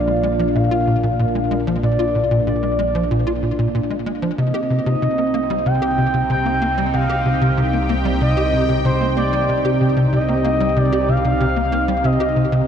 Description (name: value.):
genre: ambient, sequencer-driven space music.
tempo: 94 BPM.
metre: 4/4.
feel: straight.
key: C minor.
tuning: A4 = 440 Hz.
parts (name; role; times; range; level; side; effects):
expressive synth lead; melody; 0.0-12.7 s; C5 to G5; -22 LUFS; equal; chorus, ping-pong delay.
sweeping resonant pad; sustained chords; 0.0-12.7 s; Bb3 to G5; -22 LUFS; right 1 dB; chorus.
fat analog bass; bass; 0.0-12.7 s; Bb1 to C2; -24 LUFS; equal; none.
tight sequencer bass; riff; 0.1-12.6 s; Bb2 to G4; -20 LUFS; equal; ensemble chorus, cassette tape, ping-pong delay.
room: wet lush hall reverb, RT60 2.7 s.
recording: dark, warm production.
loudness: -16 LUFS.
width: side -8 dB against mid.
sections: 0.0-12.7 A section.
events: none.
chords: 0.0 Bb; 4.4 Cmadd9.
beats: 0.55 1.19 | 1.83 2.47 3.11 3.75 | 4.38 5.02 5.66 6.30 | 6.94 7.57 8.21 8.85 | 9.49 10.13 10.77 11.40 | 12.04.